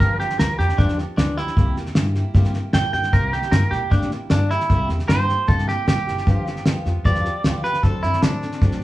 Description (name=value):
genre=rockabilly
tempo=153 BPM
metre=4/4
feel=straight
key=unclear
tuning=A4 = 439 Hz
part: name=clean electric guitar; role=melody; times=0.0-8.8 s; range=D4 to G5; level=-23 LUFS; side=right 1 dB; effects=none
part: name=picked steel-string acoustic guitar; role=accompaniment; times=0.0-8.8 s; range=G2 to A4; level=-28 LUFS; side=equal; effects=none
part: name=upright bass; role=bass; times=0.0-8.8 s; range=F#1 to Bb2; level=-24 LUFS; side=equal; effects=none
part: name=cloth-damped thuddy drum kit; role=drums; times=0.0-8.8 s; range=hi-hat, kick drum, snare drum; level=-20 LUFS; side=equal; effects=none
room=moderate studio reverb, RT60 0.5 s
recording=band playing live in one room, studio reverb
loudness=-17 LUFS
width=side -16 dB against mid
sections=0.0-8.8 A section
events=clean electric guitar solo 0.0-8.8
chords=0.0 G7; 1.6 C7; 6.3 G7; 7.8 D7